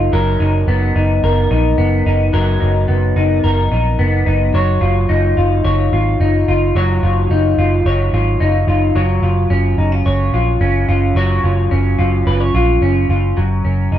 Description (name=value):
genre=jangly indie pop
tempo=109 BPM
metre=4/4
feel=straight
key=F# major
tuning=A4 = 440 Hz
part: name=electric guitar through a small old amp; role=arpeggios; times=0.0-14.0 s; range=F#3 to C#5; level=-16 LUFS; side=left 2 dB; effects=lush chorus, slapback echo
part: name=vintage muted picked electric bass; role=bass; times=0.0-14.0 s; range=F#1 to A#1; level=-15 LUFS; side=right 1 dB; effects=none
room=light reverb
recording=dark, warm production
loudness=-12 LUFS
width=side -11 dB against mid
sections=0.0-13.4 A section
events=none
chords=0.1 Bmaj7/F#; 4.5 C#add9/F#; 9.0 F#maj7(no3); 13.4 F#5